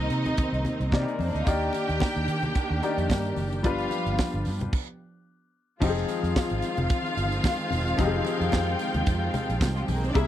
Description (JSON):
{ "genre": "disco", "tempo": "110 BPM", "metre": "4/4", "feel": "swing 56% on 16ths", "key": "unclear", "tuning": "A4 = 440 Hz", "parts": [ { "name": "clear studio string section", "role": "second line", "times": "0.0-10.3 s", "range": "F3 to G5", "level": "-32 LUFS", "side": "equal", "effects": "none" }, { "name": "clear grand piano", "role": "accompaniment", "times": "0.0-10.3 s", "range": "C3 to Eb5", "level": "-30 LUFS", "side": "left 5 dB", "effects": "none" }, { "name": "dark studio string section", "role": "sustained chords", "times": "0.0-10.3 s", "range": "C3 to G5", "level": "-32 LUFS", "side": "right 1 dB", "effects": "none" }, { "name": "vintage muted fingered electric bass", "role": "bass", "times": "0.0-10.3 s", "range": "E1 to Eb3", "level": "-28 LUFS", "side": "right 1 dB", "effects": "none" }, { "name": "tight funk drum kit", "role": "drums", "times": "0.1-10.3 s", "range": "crash cymbal, hi-hat, kick drum, snare drum", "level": "-27 LUFS", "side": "right 1 dB", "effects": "none" }, { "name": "congas", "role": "percussion", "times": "0.3-10.3 s", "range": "none", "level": "-36 LUFS", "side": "left 4 dB", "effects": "none" }, { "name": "tambourine", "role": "percussion", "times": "1.5-10.3 s", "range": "none", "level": "-47 LUFS", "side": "right 25 dB", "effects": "none" } ], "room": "little or no reverb", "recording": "dry, close 1970s-style studio recording", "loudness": "-24 LUFS", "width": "side -12 dB against mid", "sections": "0.0-5.8 A section; 5.8-10.3 B section", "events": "stop 4.7-5.8", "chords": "0.0 Cm9; 1.5 Ebmaj7; 3.6 G7; 5.8 Fm7", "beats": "0.38 0.93 | 1.47 2.01 2.56 3.10 | 3.64 4.19 4.73 5.27 | 5.82 6.36 6.90 7.45 | 7.99 8.53 9.07 9.61 | 10.15" }